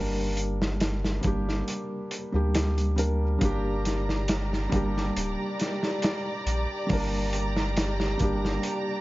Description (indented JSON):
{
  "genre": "trip hop",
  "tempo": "69 BPM",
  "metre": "4/4",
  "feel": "swing 53% on 16ths",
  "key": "G minor",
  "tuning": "A4 = 441 Hz",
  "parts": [
    { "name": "felt-muted upright piano", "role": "accompaniment", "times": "0.0-9.0 s", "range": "G3 to Bb4", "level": "-30 LUFS", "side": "equal", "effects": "harmonic tremolo, tape echo" },
    { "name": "soft dub sub bass", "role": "bass", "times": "0.0-8.6 s", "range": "D1 to D2", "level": "-28 LUFS", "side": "equal", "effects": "none" },
    { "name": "crunchy breakbeat drum kit", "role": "drums", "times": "0.4-8.9 s", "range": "hi-hat, kick drum, snare drum", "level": "-30 LUFS", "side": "equal", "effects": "none" },
    { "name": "muted studio string section", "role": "sustained chords", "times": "3.4-9.0 s", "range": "G4 to Bb5", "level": "-33 LUFS", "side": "right 1 dB", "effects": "none" }
  ],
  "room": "small room ambience",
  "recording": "vinyl crackle, nothing above 7.5 kHz",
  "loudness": "-25 LUFS",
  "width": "side -18 dB against mid",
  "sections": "0.0-9.0 A section",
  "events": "none",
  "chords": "0.0 Gm"
}